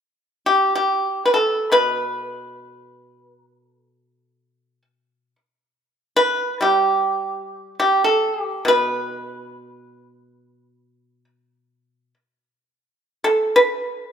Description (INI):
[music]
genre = chinese traditional, Chinese solo plucked strings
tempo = free time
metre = none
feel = none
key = unclear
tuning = A4 = 436 Hz
[part]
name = pipa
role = solo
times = 0.5-14.1 s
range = B2 to B4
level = -17 LUFS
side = equal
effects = none
[sound]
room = moderate recital hall reverb, RT60 1.6 s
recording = none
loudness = -17 LUFS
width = side -7 dB against mid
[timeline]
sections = 0.0-14.1 A section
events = none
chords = none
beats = free time